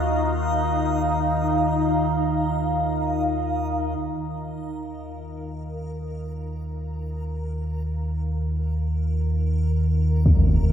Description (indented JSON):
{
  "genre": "dark ambient drone",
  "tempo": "free time",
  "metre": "none",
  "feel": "none",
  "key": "unclear",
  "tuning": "A4 = 440 Hz",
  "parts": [
    { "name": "breathy bright long shakuhachi", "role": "melody", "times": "0.0-2.9 s", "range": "Eb4", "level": "-34 LUFS", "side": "left 1 dB", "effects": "ping-pong delay" },
    { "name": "deep dark ambient pad", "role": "sustained chords", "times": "0.0-10.7 s", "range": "Eb4 to Bb5", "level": "-26 LUFS", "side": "equal", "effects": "chorus, built-in reverb" },
    { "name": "deep rumbling drone", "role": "drone", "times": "0.0-10.7 s", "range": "Eb2 to Eb3", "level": "-24 LUFS", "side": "equal", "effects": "built-in reverb" },
    { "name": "backwards swelling texture", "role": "texture", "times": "0.0-10.7 s", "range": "Bb4 to Eb5", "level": "-40 LUFS", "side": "right 1 dB", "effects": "built-in reverb" },
    { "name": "impact", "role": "percussion", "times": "10.3-10.5 s", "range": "none", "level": "-18 LUFS", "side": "equal", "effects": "low-pass filter on sfx" }
  ],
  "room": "wet cathedral reverb, RT60 5.8 s",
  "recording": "in a vast, echoing space",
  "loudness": "-22 LUFS",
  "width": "side -9 dB against mid",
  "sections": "0.0-4.0 A section; 4.0-10.7 B section",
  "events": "none",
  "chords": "0.0 Eb5"
}